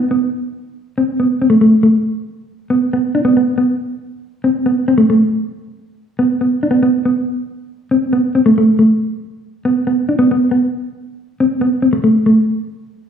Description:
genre	highlife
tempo	138 BPM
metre	4/4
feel	swing 55% on 16ths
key	unclear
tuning	A4 = 441 Hz
part	mellow electric guitar	solo	0.0-12.4 s	A3 to D4	-12 LUFS	equal	none
room	wet large studio reverb, RT60 1.3 s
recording	band playing live in one room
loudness	-12 LUFS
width	side -8 dB against mid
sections	0.0-13.1 A section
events	none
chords	none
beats	0.21 0.65 1.08 | 1.52 1.95 2.39 2.82 | 3.25 3.69 4.12 4.56 | 4.99 5.42 5.86 6.29 | 6.73 7.16 7.59 8.03 | 8.46 8.90 9.33 9.76 | 10.20 10.63 11.06 11.50 | 11.93 12.37

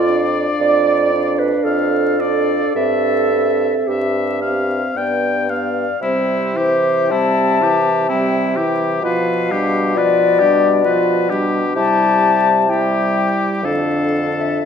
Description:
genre	classical, slow romantic movement for wind quintet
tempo	52-68 BPM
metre	3/4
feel	rubato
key	C major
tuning	A4 = 440 Hz
part	bright oboe	second line	0.0-14.7 s	E4 to G5	-22 LUFS	left 4 dB	none
part	warm clarinet	accompaniment	0.0-14.6 s	C4 to D5	-20 LUFS	right 5 dB	none
part	warm bassoon	bass	0.0-14.6 s	F2 to C3	-20 LUFS	right 1 dB	none
part	mellow concert flute	melody	0.1-14.7 s	C5 to A5	-20 LUFS	left 6 dB	none
part	mellow French horn	accompaniment	0.1-14.7 s	D3 to D4	-24 LUFS	left 1 dB	none
room	wet recital hall reverb, RT60 1.5 s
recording	minimal, uncompressed stereo recording, vinyl crackle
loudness	-14 LUFS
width	side -7 dB against mid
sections	0.0-6.0 A section; 6.0-14.7 B section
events	none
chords	0.0 Dm/F; 2.8 C/G; 5.0 G; 6.0 C; 9.0 G7/B; 11.8 C; 13.6 Dm/F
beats	0.60 1.66 | 2.77 3.89 4.96 | 6.01 7.10 8.08 | 9.03 9.95 10.84 | 11.75 12.68 13.63 | 14.64

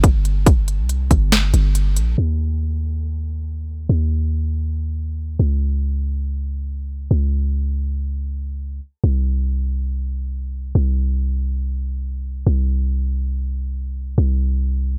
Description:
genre	future bass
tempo	140 BPM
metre	4/4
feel	swing 54% on 16ths, half-time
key	unclear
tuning	A4 = 439 Hz
part	warm 808-style bass	bass	0.0-15.0 s	G1 to Eb2	-21 LUFS	equal	sidechain pumping
part	electronic kick drum	drums	0.0-1.2 s	none	-16 LUFS	equal	none
part	trap drum kit	drums	0.0-2.1 s	hi-hat, snare drum	-22 LUFS	equal	low-pass filter on hats, low-pass filter on snare
room	little or no reverb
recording	low-pass filter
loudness	-21 LUFS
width	mono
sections	0.0-2.2 A section; 2.2-15.0 B section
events	drop 0.0-2.2; kick drops out 1.3-2.2; filter sweep 2.2-15.0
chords	none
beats	0.04 | 0.47 0.89 1.32 1.75 | 2.18 2.61 3.04 3.46 | 3.89 4.32 4.75 5.18 | 5.61 6.04 6.46 6.89 | 7.32 7.75 8.18 8.61 | 9.04 9.46 9.89 10.32 | 10.75 11.18 11.61 12.04 | 12.46 12.89 13.32 13.75 | 14.18 14.61

